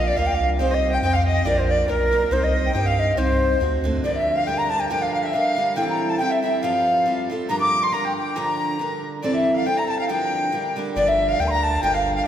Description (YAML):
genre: celtic folk, Celtic polka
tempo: 139 BPM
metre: 2/4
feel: swing 54% on 8ths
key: C dorian, G dorian from 4.0 s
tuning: A4 = 442 Hz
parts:
  - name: wooden flute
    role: melody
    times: 0.0-12.3 s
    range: Bb4 to D6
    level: -22 LUFS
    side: equal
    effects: none
  - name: warm fiddle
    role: second line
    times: 0.0-12.3 s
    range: Bb4 to D6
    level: -27 LUFS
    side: left 3 dB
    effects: none
  - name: picked steel-string acoustic guitar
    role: accompaniment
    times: 0.0-12.3 s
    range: G2 to C5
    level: -26 LUFS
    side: right 2 dB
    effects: none
  - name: warm sub bass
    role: bass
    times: 0.0-4.0, 11.0-12.2 s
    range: G1 to G2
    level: -24 LUFS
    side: equal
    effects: none
room: wet church reverb, RT60 2.7 s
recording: recorded in a church or concert hall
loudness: -19 LUFS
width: side -10 dB against mid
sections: 0.0-4.0 A section; 4.0-11.0 B section; 11.0-12.3 B section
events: none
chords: 0.0 Bb; 0.6 Cm; 1.5 Bb; 2.3 Cm; 3.6 D7; 4.0 Gm7; 5.8 C6/G; 6.6 F/G; 7.5 Gm7; 9.2 C6/G; 10.1 Gm7